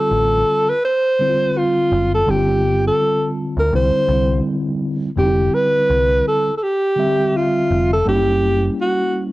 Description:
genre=hip hop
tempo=83 BPM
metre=4/4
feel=swing 57% on 16ths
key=unclear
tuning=A4 = 439 Hz
part: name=mellow alto saxophone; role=melody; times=0.0-9.2 s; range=F4 to C5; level=-16 LUFS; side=equal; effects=cassette tape
part: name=mellow tine electric piano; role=accompaniment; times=0.0-9.3 s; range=D3 to E5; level=-21 LUFS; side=equal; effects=medium stereo tremolo, cassette tape
part: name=deep dub picked electric bass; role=bass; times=0.1-8.7 s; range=F1 to D2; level=-20 LUFS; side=equal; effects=none
room=light reverb, small room ambience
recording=home recording on cassette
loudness=-15 LUFS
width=side -18 dB against mid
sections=0.0-9.3 A section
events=none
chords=0.0 Dm11; 2.3 G5; 3.7 C; 5.2 Fsus2; 8.1 F#7b9

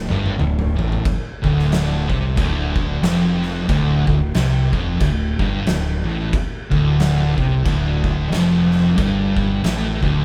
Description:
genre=stoner and doom metal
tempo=91 BPM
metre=4/4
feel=swing 58% on 8ths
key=D minor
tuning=A4 = 438 Hz
part: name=thick fuzz guitar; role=riff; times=0.0-10.2 s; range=D2 to C3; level=-22 LUFS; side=equal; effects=distortion
part: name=thick fuzz guitar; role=riff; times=0.0-10.2 s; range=D2 to C3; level=-27 LUFS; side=equal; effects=distortion
part: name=fuzz fingered electric bass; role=bass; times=0.0-10.2 s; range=D1 to C2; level=-26 LUFS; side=equal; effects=overdrive
part: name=oversized low-tuned drum kit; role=drums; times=0.1-10.2 s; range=crash cymbal, kick drum, snare drum, toms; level=-24 LUFS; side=equal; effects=none
room=light reverb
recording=band playing live in one room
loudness=-19 LUFS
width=mono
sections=0.0-10.2 A section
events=drum fill 0.0-1.0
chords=0.0 Dm

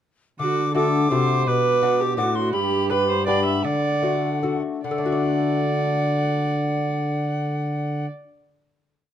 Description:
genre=classical, renaissance-style consort dance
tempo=146-170 BPM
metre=3/4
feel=straight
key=D mixolydian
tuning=A4 = 440 Hz
part: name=bright alto recorder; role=melody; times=0.4-8.1 s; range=F#5 to D6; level=-26 LUFS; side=left 3 dB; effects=none
part: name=warm viola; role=second line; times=0.4-8.1 s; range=F#4 to E5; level=-25 LUFS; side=right 5 dB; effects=none
part: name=lute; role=accompaniment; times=0.4-8.4 s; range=G2 to D5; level=-26 LUFS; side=left 6 dB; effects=none
part: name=mellow trombone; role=bass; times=0.4-8.1 s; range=G2 to D3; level=-25 LUFS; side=right 2 dB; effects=none
room=light reverb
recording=dark, warm production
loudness=-20 LUFS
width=side -10 dB against mid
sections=0.4-4.8 A section; 4.8-7.3 final chord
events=slowing down 2.0-4.8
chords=0.4 D; 1.5 Bm; 2.5 G; 3.6 D

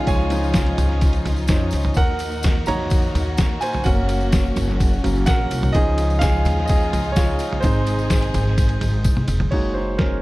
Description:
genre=piano-driven pop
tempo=127 BPM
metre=4/4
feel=straight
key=Db major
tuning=A4 = 440 Hz
part: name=clear concert grand piano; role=accompaniment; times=0.0-10.2 s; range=F3 to Bb5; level=-23 LUFS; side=right 1 dB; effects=none
part: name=dark studio string section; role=sustained chords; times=0.0-9.5 s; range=Bb2 to Ab4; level=-29 LUFS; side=left 1 dB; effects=none
part: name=upright bass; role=bass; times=0.1-10.2 s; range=F1 to F2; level=-22 LUFS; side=equal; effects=none
part: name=lo-fi sampler-style drum kit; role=drums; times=0.1-10.1 s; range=crash cymbal, kick drum, ride cymbal, snare drum, toms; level=-20 LUFS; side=equal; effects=none
part: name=tambourine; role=percussion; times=0.1-9.4 s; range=none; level=-39 LUFS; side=left 6 dB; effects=none
room=small room ambience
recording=dark, warm production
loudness=-17 LUFS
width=side -19 dB against mid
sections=0.0-9.5 A section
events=grand piano solo 0.0-9.5; drum fill 9.1-9.5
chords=0.0 Dbadd9; 2.0 Ebm; 3.9 Gb; 5.7 Dbadd9; 7.6 Ab; 9.5 Gb6

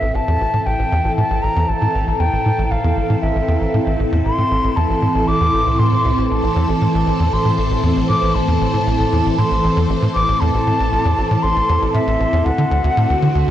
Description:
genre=ambient, sequencer-driven space music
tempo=117 BPM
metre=4/4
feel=straight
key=unclear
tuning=A4 = 438 Hz
part: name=hollow wooden flute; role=melody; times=0.0-13.5 s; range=E5 to D6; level=-20 LUFS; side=left 1 dB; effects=ping-pong delay
part: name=phased string machine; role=sustained chords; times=0.0-13.5 s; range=D2 to A4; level=-20 LUFS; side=equal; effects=ensemble chorus, phaser
part: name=tight sequencer bass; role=riff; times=0.0-13.5 s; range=A1 to D3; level=-18 LUFS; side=equal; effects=ensemble chorus
room=wet huge ambient reverb, RT60 7.8 s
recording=worn, warbling old tape, cassette tape, warbly pitch drift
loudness=-14 LUFS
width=side -11 dB against mid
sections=0.0-13.5 A section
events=none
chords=0.0 Am; 12.5 D7

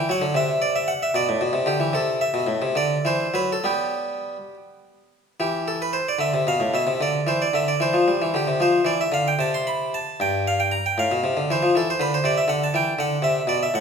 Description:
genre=classical, baroque-style suite movement for harpsichord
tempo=66-81 BPM (dotted quarters)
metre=6/8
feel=rubato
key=G major, C major from 5.4 s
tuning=A4 = 439 Hz
part: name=harpsichord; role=solo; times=0.0-13.8 s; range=G2 to C6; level=-20 LUFS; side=equal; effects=none
room=wet scoring stage reverb, RT60 1.9 s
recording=minimal, uncompressed stereo recording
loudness=-20 LUFS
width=side -6 dB against mid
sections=0.0-5.4 A section; 5.4-13.8 A section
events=none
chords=0.4 N.C.; 1.1 Am11; 1.9 Am/C; 2.8 D; 3.6 G; 5.4 C/E; 7.0 Dsus2; 7.8 C/E; 8.6 F5; 10.2 N.C.; 11.0 F/A; 11.7 Cmaj13; 12.5 Dadd9; 13.2 Amadd9 (rootless)

